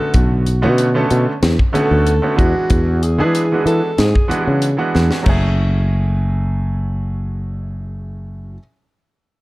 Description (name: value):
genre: electric jazz fusion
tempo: 94 BPM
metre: 4/4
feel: straight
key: F# minor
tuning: A4 = 441 Hz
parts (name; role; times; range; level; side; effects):
- warm alto saxophone; melody; 0.0-4.6 s; F#4 to A4; -21 LUFS; equal; none
- bright baby grand piano; accompaniment; 0.0-8.6 s; D3 to A4; -21 LUFS; right 2 dB; none
- sustaining fretless electric bass; bass; 0.1-8.6 s; F#1 to E3; -16 LUFS; equal; none
- crisp fusion drum kit; drums; 0.1-5.4 s; crash cymbal, hi-hat, kick drum, snare drum; -18 LUFS; equal; none
room: studio ambience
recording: dark, warm production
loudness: -14 LUFS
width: side -20 dB against mid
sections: 0.0-5.3 A section; 5.3-7.8 B section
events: alto saxophone solo 0.0-5.3; drum fill 4.9-5.3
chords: 0.0 Bm9; 2.4 E9; 5.3 F#m9